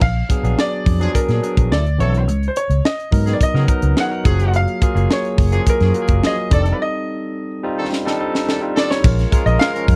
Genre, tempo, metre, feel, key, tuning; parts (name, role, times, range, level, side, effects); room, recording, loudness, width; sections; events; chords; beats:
polished 1980s jazz-funk pop; 106 BPM; 4/4; straight; A4 = 440 Hz
clear baby grand piano; melody; 0.0-10.0 s; Bb4 to Gb5; -25 LUFS; equal
barky tine electric piano; accompaniment; 0.0-10.0 s; E3 to Bb4; -25 LUFS; equal; overdrive, subtle chorus
vintage muted fingered electric bass; bass; 0.0-10.0 s; F1 to Db3; -19 LUFS; equal
tight funk drum kit; drums; 0.0-10.0 s; crash cymbal, hi-hat, kick drum, snare drum; -20 LUFS; equal
warm horn section; second line; 1.0-9.9 s; Eb3 to Bb4; -29 LUFS; equal
little or no reverb; dry, close 1970s-style studio recording; -17 LUFS; mono
0.0-9.0 A section
break 6.8-9.0; drum fill 7.9-9.0
0.0 Bb7b9b13; 1.7 D9; 2.3 Db13sus4; 4.3 Gbmaj9; 6.5 F13; 9.0 Bbm7
| 0.01 0.58 1.15 1.71 | 2.28 2.84 3.41 3.97 | 4.54 5.10 5.66 6.23 | 6.79 7.36 7.92 8.48 | 9.04 9.61